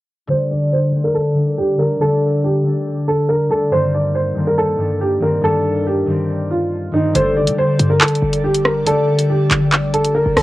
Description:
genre	hip hop, drill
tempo	140 BPM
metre	4/4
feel	half-time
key	G minor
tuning	A4 = 438 Hz
part	dark upright piano	melody	0.3-10.4 s	Eb4 to D5	-18 LUFS	right 1 dB	low-pass filter, cassette tape, tape echo
part	concert harp	accompaniment	0.3-10.4 s	G2 to G4	-18 LUFS	left 1 dB	low-pass filter, cassette tape
part	hollow clarinet-like synth lead	second line	7.1-9.3 s	A4 to D5	-25 LUFS	left 3 dB	chorus, cassette tape, tape echo
part	airy breathy pad	sustained chords	7.5-10.4 s	G3 to D5	-30 LUFS	equal	chorus, phaser, cassette tape
part	short 808-style bass	bass	7.2-10.4 s	F1 to D3	-24 LUFS	equal	none
part	drill drum kit	drums	7.2-10.4 s	handclaps, hi-hat, rim click	-16 LUFS	equal	overdrive
room	light reverb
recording	home recording on cassette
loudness	-14 LUFS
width	side -17 dB against mid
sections	0.3-7.2 A section; 7.2-10.4 B section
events	filter sweep 0.3-7.2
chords	0.3 Gsus2; 3.7 Cm7/G; 7.2 Gsus2

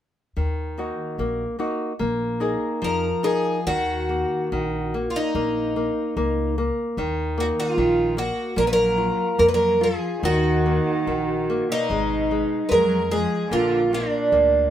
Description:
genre	fado-style ballad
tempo	74 BPM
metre	2/4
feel	rubato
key	Eb minor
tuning	A4 = 441 Hz
part	nylon-string guitar	accompaniment	0.4-14.7 s	Eb3 to Bb4	-25 LUFS	left 1 dB	none
part	upright bass	bass	0.4-14.7 s	Ab1 to F2	-28 LUFS	left 1 dB	none
part	picked twelve-string acoustic guitar	melody	2.8-14.7 s	D4 to Cb5	-21 LUFS	right 1 dB	none
part	rich cello	second line	8.6-14.7 s	Bb2 to Ab3	-28 LUFS	right 3 dB	none
room	moderate studio reverb, RT60 0.5 s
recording	band playing live in one room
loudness	-20 LUFS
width	side -10 dB against mid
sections	0.4-3.7 A section; 3.7-14.7 B section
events	none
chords	0.4 Ebm; 2.0 Bb7sus4; 3.7 Ebm; 5.4 Bbsus4; 7.0 Eb5; 8.6 Bb5; 10.2 Ebm; 11.9 Abm; 13.5 Bb

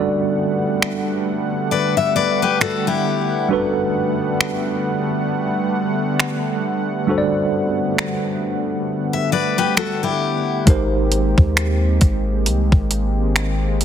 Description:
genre	contemporary R&B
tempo	67 BPM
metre	4/4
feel	swing 58% on 16ths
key	G major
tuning	A4 = 441 Hz
part	mellow tine electric piano	accompaniment	0.0-13.8 s	G3 to D5	-23 LUFS	right 2 dB	medium stereo tremolo
part	warm analog pad	sustained chords	0.0-13.8 s	D3 to F#5	-22 LUFS	right 1 dB	chorus, tremolo, sidechain pumping
part	crisp 8-bit digital drum machine	drums	0.8-13.8 s	finger snaps, hi-hat, kick drum	-18 LUFS	equal	soft clipping on snare
part	picked steel-string acoustic guitar	arpeggios	1.7-3.5, 9.1-10.6 s	E4 to E5	-19 LUFS	left 8 dB	ping-pong delay
part	long sustained 808-style bass	bass	10.7-13.8 s	Ab1 to Eb2	-19 LUFS	equal	none
room	light reverb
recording	dense, heavily limited modern master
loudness	-17 LUFS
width	side -9 dB against mid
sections	0.0-13.8 A section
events	break 0.0-10.7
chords	0.0 Gmaj9; 10.7 Abmaj9

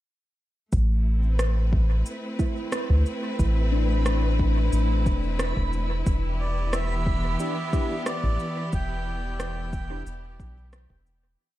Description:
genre	ambient dub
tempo	90 BPM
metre	4/4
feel	straight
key	A minor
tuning	A4 = 439 Hz
part	bright studio string section	sustained chords	0.7-11.4 s	E3 to B4	-33 LUFS	equal	none
part	soft dub sub bass	bass	0.7-11.4 s	E1 to D2	-24 LUFS	equal	none
part	electronic cabasa and rim click	drums	0.7-11.2 s	none	-34 LUFS	right 1 dB	overdrive, dub echo
part	electronic kick drum	drums	0.7-11.0 s	none	-26 LUFS	equal	overdrive
part	backwards swelling texture	texture	1.8-11.4 s	B5	-39 LUFS	right 5 dB	built-in reverb
part	handpan	arpeggios	2.4-5.1 s	D4 to B4	-33 LUFS	left 4 dB	dub echo
part	melodica	melody	6.4-10.0 s	D5 to G5	-34 LUFS	equal	dub echo
part	bell-like tine electric piano	stabs	7.4-10.0 s	D4 to G4	-36 LUFS	left 1 dB	phaser, dub echo
room	little or no reverb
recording	none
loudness	-22 LUFS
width	side -15 dB against mid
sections	0.7-11.4 groove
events	fade-out 7.8-11.4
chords	0.7 Amadd9; 6.1 Em

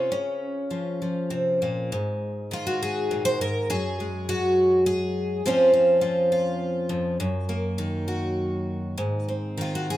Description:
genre	folk, solo fingerstyle acoustic guitar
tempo	101 BPM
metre	3/4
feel	rubato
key	Db major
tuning	A4 = 439 Hz
part	picked twelve-string acoustic guitar	solo	0.0-10.0 s	F2 to C5	-22 LUFS	equal	none
room	light reverb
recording	minimal, uncompressed stereo recording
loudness	-22 LUFS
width	side -14 dB against mid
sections	0.0-1.9 A section; 1.9-10.0 B section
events	none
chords	0.1 Db; 1.9 Absus2; 3.7 Gbsus2; 5.4 Dbmaj7/F; 7.2 Ebm/Gb; 9.0 Ab

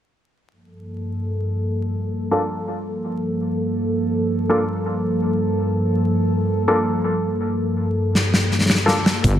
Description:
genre	glitch hop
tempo	110 BPM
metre	4/4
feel	swing 60% on 16ths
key	G minor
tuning	A4 = 440 Hz
part	warbly tape-like pad	sustained chords	0.9-9.4 s	G2 to Bb4	-21 LUFS	equal	chorus, built-in reverb, sidechain pumping
part	bright grand piano	stabs	2.3-8.9 s	Bb3 to A4	-22 LUFS	left 1 dB	vintage 12-bit sampler grit, sidechain pumping, low-pass filter, tape echo
part	gated 80s drum kit	drums	8.2-9.4 s	hi-hat, snare drum	-18 LUFS	left 1 dB	tape echo
part	wobble bass	bass	9.2-9.4 s	G1	-16 LUFS	equal	chorus, tube saturation
part	electronic kick drum	drums	9.2-9.4 s	none	-19 LUFS	equal	none
room	light reverb, small room ambience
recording	echo-heavy mix, vinyl crackle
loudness	-19 LUFS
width	side -11 dB against mid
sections	0.5-9.2 A section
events	drum fill 8.2-9.2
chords	0.5 Gm9

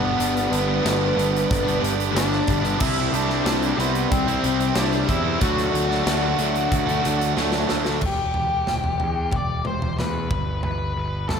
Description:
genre	quiet-loud alternative rock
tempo	92 BPM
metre	4/4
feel	straight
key	G major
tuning	A4 = 439 Hz
part	octave-fuzz lead guitar	melody	0.0-11.4 s	B3 to F#5	-25 LUFS	left 2 dB	distortion, slapback echo
part	string machine, full ensemble	sustained chords	0.0-8.0 s	G4 to D6	-36 LUFS	equal	none
part	overdriven electric guitar	riff	0.0-8.0 s	G2 to E4	-27 LUFS	left 10 dB	slapback echo
part	overdriven semi-hollow guitar	riff	0.0-8.0 s	G2 to E4	-25 LUFS	right 12 dB	slapback echo
part	fuzz picked electric bass	bass	0.0-11.4 s	E1 to E2	-27 LUFS	equal	overdrive
part	big rock drum kit	drums	0.2-11.4 s	crash cymbal, hi-hat, kick drum, snare drum, toms	-26 LUFS	equal	none
room	moderate lush hall reverb, RT60 2.2 s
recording	big arena sound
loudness	-19 LUFS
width	side -6 dB against mid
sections	0.0-8.0 A section; 8.0-11.4 B section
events	drum fill 7.4-8.0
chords	0.0 G; 2.8 Cadd9; 5.4 D; 8.0 Em; 10.3 G

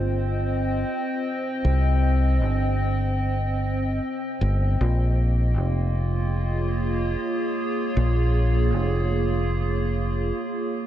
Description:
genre	ambient dub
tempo	free time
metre	none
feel	none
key	Bb dorian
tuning	A4 = 440 Hz
part	warbly tape-like pad	sustained chords	0.0-10.9 s	Bb3 to G5	-26 LUFS	right 1 dB	chorus, built-in reverb
part	fingered electric bass	bass	0.0-10.3 s	F1 to C2	-22 LUFS	equal	none
room	digital ambience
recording	none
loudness	-21 LUFS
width	side -11 dB against mid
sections	0.0-10.9 A section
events	none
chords	0.0 Cm; 4.8 Bbm7

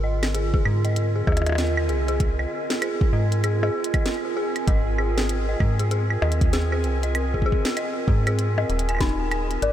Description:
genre	IDM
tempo	97 BPM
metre	4/4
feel	swing 62% on 16ths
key	Ab lydian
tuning	A4 = 440 Hz
part	warbly tape-like pad	sustained chords	0.0-9.7 s	D3 to Bb4	-30 LUFS	right 3 dB	chorus, built-in reverb
part	dark detuned synth bell	arpeggios	0.0-9.7 s	Eb4 to Ab5	-29 LUFS	left 3 dB	chorus, analog delay
part	metallic FM bass	bass	0.0-9.7 s	Eb1 to Ab2	-23 LUFS	equal	tube saturation
part	bubbling stepped-filter texture	texture	0.0-9.7 s	Ab4 to Ab5	-36 LUFS	right 1 dB	chorus, built-in reverb
part	glitchy drum kit	drums	0.2-9.7 s	claves, hi-hat, percussion blips, snare drum	-29 LUFS	equal	analog delay
part	electronic kick drum	drums	0.5-9.2 s	none	-22 LUFS	equal	none
part	warm velvety synth lead	melody	9.6-9.7 s	D5	-20 LUFS	left 3 dB	chorus
room	light reverb, digital ambience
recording	none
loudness	-20 LUFS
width	side -11 dB against mid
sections	0.0-9.7 A section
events	none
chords	0.0 Ab

